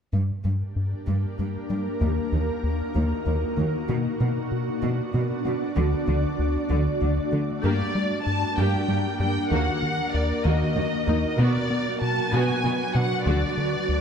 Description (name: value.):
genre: cinematic.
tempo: 64 BPM (dotted quarters).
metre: 6/8.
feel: straight.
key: G harmonic minor.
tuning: A4 = 440 Hz.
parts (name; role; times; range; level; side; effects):
ethereal airy pad; sustained chords; 0.9-14.0 s; F#3 to D5; -28 LUFS; equal; ensemble chorus, built-in reverb.
rubbery square bass; riff; 0.1-14.0 s; D2 to B3; -26 LUFS; left 2 dB; none.
rich symphonic cello section; bass; 0.1-13.3 s; Eb2 to D3; -29 LUFS; right 3 dB; none.
warm symphonic violin section; melody; 7.6-14.0 s; D5 to A5; -28 LUFS; left 1 dB; none.
warm symphonic viola section; accompaniment; 7.6-13.6 s; Gb3 to G4; -31 LUFS; right 3 dB; none.
harp-like synth pluck; arpeggios; 7.6-13.4 s; D3 to B4; -32 LUFS; left 1 dB; chorus, tape echo.
room: moderate scoring stage reverb, RT60 2.1 s.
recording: none.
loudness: -22 LUFS.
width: side -7 dB against mid.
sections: 0.1-7.6 A section; 7.6-14.0 B section.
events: none.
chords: 0.1 Gm; 2.0 Ebm; 3.9 Bm; 5.8 D; 7.6 Gm; 9.5 Ebm; 11.4 Bm; 13.3 D.